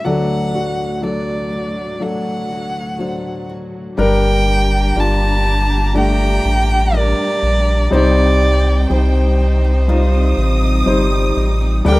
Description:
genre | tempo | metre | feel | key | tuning
pop ballad | 61 BPM | 4/4 | straight | G minor from 4.0 s | A4 = 440 Hz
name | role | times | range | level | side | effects
warm violin | melody | 0.0-12.0 s | C5 to A5 | -21 LUFS | right 1 dB | none
warm grand piano | accompaniment | 0.0-12.0 s | D2 to C5 | -20 LUFS | left 2 dB | none
rich studio string section | sustained chords | 0.0-12.0 s | D2 to G4 | -26 LUFS | equal | none
picked steel-string acoustic guitar | arpeggios | 0.0-12.0 s | G2 to A4 | -28 LUFS | right 2 dB | none
rich studio violin section | second line | 4.0-12.0 s | G5 to Eb6 | -28 LUFS | right 1 dB | none
warm sub bass | bass | 4.0-12.0 s | G1 to D2 | -15 LUFS | equal | none
room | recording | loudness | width
little or no reverb | rough home demo mix | -13 LUFS | side -20 dB against mid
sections
0.0-4.0 A section; 4.0-12.0 B section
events
none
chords
0.1 D; 4.0 Gm; 7.9 Cm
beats
| 0.05 1.03 2.02 3.00 | 3.98 4.97 5.95 6.93 | 7.92 8.90 9.89 10.87 | 11.85

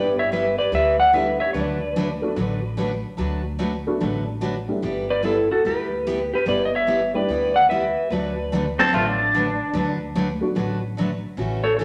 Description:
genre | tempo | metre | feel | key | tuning
country, western swing | 146 BPM | 4/4 | swing 64% on 8ths | D major | A4 = 440 Hz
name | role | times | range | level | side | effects
clean lap steel guitar | melody | 0.0-11.8 s | E4 to F#5 | -23 LUFS | equal | none
dark upright piano | accompaniment | 0.0-10.5 s | F#3 to A4 | -30 LUFS | equal | none
picked steel-string acoustic guitar | accompaniment | 0.0-11.8 s | C#3 to B4 | -28 LUFS | equal | none
upright bass | bass | 0.0-11.8 s | G1 to D2 | -33 LUFS | equal | none
pedal steel guitar | second line | 8.8-9.9 s | A3 to A4 | -22 LUFS | equal | none
room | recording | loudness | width
wet large studio reverb, RT60 1.2 s | none | -22 LUFS | mono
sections
0.0-11.8 A section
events
none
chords
0.0 G6; 1.5 D6; 4.8 G6; 8.1 D6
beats
0.32 0.73 1.14 | 1.55 1.96 2.37 2.78 | 3.19 3.60 4.01 4.42 | 4.83 5.24 5.65 6.06 | 6.47 6.88 7.29 7.70 | 8.11 8.52 8.93 9.34 | 9.74 10.15 10.56 10.97 | 11.38 11.79

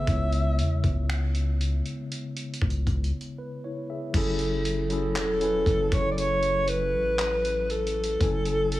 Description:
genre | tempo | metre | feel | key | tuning
contemporary R&B | 59 BPM | 4/4 | straight | F# minor | A4 = 440 Hz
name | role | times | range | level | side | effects
mellow alto saxophone | melody | 0.0-8.8 s | A4 to E5 | -26 LUFS | equal | none
tine electric piano | accompaniment | 0.0-8.8 s | C#3 to G#5 | -30 LUFS | left 1 dB | medium stereo tremolo
long sustained 808-style bass | bass | 0.0-8.8 s | E1 to E2 | -28 LUFS | equal | none
dusty soul sampler-style drum kit | drums | 0.1-8.8 s | crash cymbal, finger snaps, handclaps, hi-hat, kick drum | -30 LUFS | equal | none
room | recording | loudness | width
digital ambience | small room ambience | -24 LUFS | side -16 dB against mid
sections
0.0-4.1 A section; 4.1-8.8 B section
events
break 3.1-4.1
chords
0.1 C#m7; 4.1 F#m9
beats
| 0.07 1.09 2.11 3.12 | 4.14 5.16 6.17 7.19 | 8.21

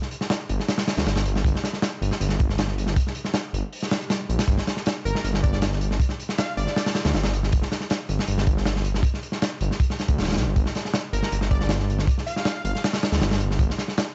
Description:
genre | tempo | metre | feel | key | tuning
drum and bass, jungle | 158 BPM | 4/4 | straight | G minor | A4 = 440 Hz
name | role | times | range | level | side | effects
crunchy breakbeat drum kit | drums | 0.0-14.1 s | hi-hat, kick drum, snare drum | -26 LUFS | equal | none
detuned saw bass | bass | 0.5-13.7 s | D1 to D2 | -27 LUFS | equal | tube saturation
swell | sound effects | 4.1-4.5 s | none | -40 LUFS | equal | none
plucky unison lead | melody | 5.1-6.9, 11.1-12.8 s | Bb4 to F5 | -36 LUFS | equal | dub echo
room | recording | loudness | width
small room reverb | dark, warm production, nothing above 7.9 kHz | -24 LUFS | mono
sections
0.0-14.1 A section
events
none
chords
none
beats
0.31 0.69 1.07 | 1.45 1.83 2.21 2.58 | 2.96 3.35 3.73 4.10 | 4.48 4.86 5.24 5.62 | 6.00 6.38 6.76 7.14 | 7.52 7.90 8.28 8.66 | 9.04 9.42 9.80 10.18 | 10.56 10.94 11.32 11.70 | 12.08 12.46 12.84 13.22 | 13.60 13.98

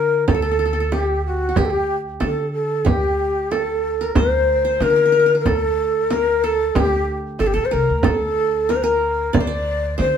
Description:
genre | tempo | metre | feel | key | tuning
Arabic maqam ensemble | 93 BPM | 4/4 | straight | D maqam hijaz | A4 = 440 Hz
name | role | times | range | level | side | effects
breathy bright ney | melody | 0.0-10.2 s | F#4 to D5 | -18 LUFS | left 2 dB | none
qanun | second line | 0.0-10.2 s | F#4 to D5 | -26 LUFS | right 4 dB | none
upright bass | bass | 0.0-10.2 s | G1 to D3 | -25 LUFS | equal | none
frame drum | percussion | 0.3-10.1 s | none | -21 LUFS | right 3 dB | none
room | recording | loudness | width
wet small room reverb, RT60 0.5 s | heard from further back in the room | -16 LUFS | side -8 dB against mid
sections
0.0-10.2 A section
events
none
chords
none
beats
| 0.28 0.92 1.57 2.22 | 2.87 3.51 4.16 4.81 | 5.45 6.10 6.75 7.40 | 8.04 8.69 9.34 9.98

